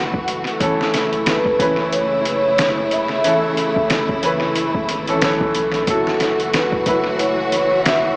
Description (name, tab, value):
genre	trip hop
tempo	91 BPM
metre	4/4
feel	swing 58% on 16ths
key	unclear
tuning	A4 = 438 Hz
part	clear upright piano	accompaniment	0.0-8.2 s	E3 to B4	-20 LUFS	equal	harmonic tremolo, tape echo
part	clear studio string section	sustained chords	0.0-8.2 s	C#3 to F#4	-23 LUFS	equal	none
part	soft dub sub bass	bass	0.0-8.2 s	F#1 to B1	-35 LUFS	equal	none
part	trip hop sampler-style drum kit	drums	0.1-8.0 s	hi-hat, kick drum, snare drum	-21 LUFS	equal	overdrive, tape echo
part	pure breathy sine lead	melody	1.3-8.2 s	B4 to E5	-20 LUFS	equal	analog chorus, tape echo
room	light reverb, digital ambience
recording	echo-heavy mix, vinyl crackle, small speaker sound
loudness	-15 LUFS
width	side -29 dB against mid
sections	0.0-8.2 A section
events	none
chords	0.0 F#m7; 0.6 A/F#; 5.9 F#m7